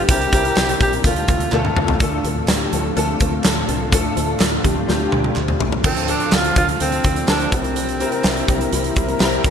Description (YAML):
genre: 1980s-style pop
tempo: 125 BPM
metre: 4/4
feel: straight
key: D minor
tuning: A4 = 441 Hz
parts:
  - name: clear alto saxophone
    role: melody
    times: 0.0-1.7, 5.9-8.9 s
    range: C4 to G4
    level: -23 LUFS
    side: right 2 dB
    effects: shimmer reverb, digital delay
  - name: dark grand piano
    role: accompaniment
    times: 0.0-9.5 s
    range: C3 to D5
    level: -22 LUFS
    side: left 4 dB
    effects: ensemble chorus, shimmer reverb
  - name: ethereal airy pad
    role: sustained chords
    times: 0.0-9.5 s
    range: A2 to F4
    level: -27 LUFS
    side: right 1 dB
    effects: ensemble chorus, built-in reverb, shimmer reverb
  - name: fingered electric bass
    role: bass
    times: 0.1-9.5 s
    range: Bb1 to D2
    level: -25 LUFS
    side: equal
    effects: none
  - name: huge arena drum kit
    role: drums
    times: 0.1-9.5 s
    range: crash cymbal, hi-hat, kick drum, snare drum, tambourine, toms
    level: -19 LUFS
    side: equal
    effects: none
  - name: group handclap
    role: percussion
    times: 0.6-9.3 s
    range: none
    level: -35 LUFS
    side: right 4 dB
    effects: none
room: moderate lush hall reverb, RT60 1.6 s, small room ambience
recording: bright 1980s-style digital production, lossy compression artefacts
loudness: -16 LUFS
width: side -7 dB against mid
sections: 0.0-2.0 A section; 2.0-5.8 B section; 5.8-9.5 C section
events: drum fill 1.5-2.0, 4.9-5.8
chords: 0.1 C7; 1.0 Dm; 5.8 Dm7; 7.5 C7